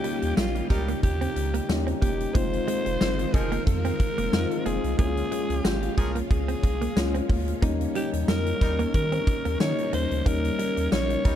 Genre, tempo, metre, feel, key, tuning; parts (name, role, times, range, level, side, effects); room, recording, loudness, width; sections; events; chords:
1980s-style pop; 91 BPM; 4/4; swing 55% on 16ths; Eb mixolydian; A4 = 440 Hz
raspy alto saxophone; melody; 0.0-11.4 s; F4 to Db5; -30 LUFS; equal; ping-pong delay
soft electric-piano-like synth keys; accompaniment; 0.0-11.4 s; G3 to G4; -31 LUFS; left 4 dB; chorus
string machine, full ensemble; sustained chords; 0.0-11.4 s; Db3 to F4; -33 LUFS; equal; ensemble chorus
direct-recorded clean electric guitar; riff; 0.0-11.1 s; G3 to C4; -35 LUFS; right 6 dB; lush chorus
big rock drum kit; drums; 0.0-11.4 s; hi-hat, kick drum, snare drum, tambourine; -27 LUFS; equal
saturated sub bass; bass; 0.2-11.4 s; Fb1 to Eb3; -29 LUFS; equal
clear horn section; stabs; 0.7-11.4 s; F3 to Bb4; -38 LUFS; right 1 dB
studio ambience; dark, warm production; -23 LUFS; side -10 dB against mid
0.0-11.4 A section
0.0 Eb7; 2.4 Fm7; 5.0 Db6; 7.6 Eb7